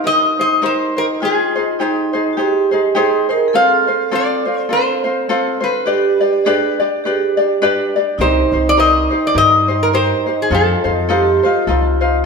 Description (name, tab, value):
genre	Hawaiian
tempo	103 BPM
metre	4/4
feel	swing 58% on 8ths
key	unclear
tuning	A4 = 444 Hz
part	lap resonator guitar	melody	0.0-11.7 s	Ab4 to F5	-16 LUFS	left 1 dB	none
part	vibraphone with medium hard mallets	second line	0.0-12.3 s	Eb4 to Bb4	-18 LUFS	right 5 dB	none
part	ukulele	accompaniment	0.0-12.2 s	C4 to D5	-18 LUFS	left 3 dB	none
part	upright bass	bass	8.2-12.3 s	C2 to G2	-19 LUFS	equal	none
room	wet stone room reverb, RT60 1.3 s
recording	band playing live in one room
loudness	-13 LUFS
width	side -4 dB against mid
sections	0.0-12.3 A section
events	none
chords	0.0 Eb6; 1.2 Abmaj7; 3.5 F; 5.9 G; 8.2 Cm7; 10.5 F7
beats	0.05 0.63 | 1.21 1.79 2.38 2.96 | 3.54 4.12 4.70 5.28 | 5.86 6.44 7.03 7.61 | 8.19 8.77 9.35 9.93 | 10.52 11.10 11.68